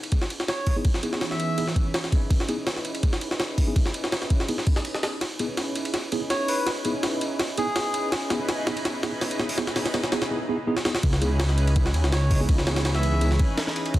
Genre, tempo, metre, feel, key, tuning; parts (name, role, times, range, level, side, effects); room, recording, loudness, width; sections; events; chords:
drum and bass, jungle; 165 BPM; 4/4; straight; C# minor; A4 = 439 Hz
lush unison pad; sustained chords; 0.0-14.0 s; E3 to C#5; -32 LUFS; equal; chorus
jungle sampler-style drum kit; drums; 0.0-14.0 s; hi-hat, kick drum, ride cymbal, snare drum; -25 LUFS; equal; overdrive, studio reverb
melodica; melody; 0.5-1.7, 6.3-8.1, 12.1-13.3 s; G#4 to E5; -30 LUFS; equal; dub echo
mellow tine electric piano; stabs; 0.8-13.3 s; B3 to G#4; -31 LUFS; right 1 dB; medium stereo tremolo, low-pass filter, dub echo
detuned saw bass; bass; 11.0-14.0 s; C#2 to D#2; -22 LUFS; equal
moderate echo chamber reverb, RT60 1.7 s; dense, heavily limited modern master, vinyl crackle; -22 LUFS; side -15 dB against mid
0.0-11.0 A section; 11.0-14.0 B section
build-up 0.0-11.0; filter sweep on analog synth pad 0.0-11.0; filter sweep on tine electric piano 0.0-11.0; drum fill 5.2-10.3, 10.8; drop 11.0-14.0
0.0 C#m7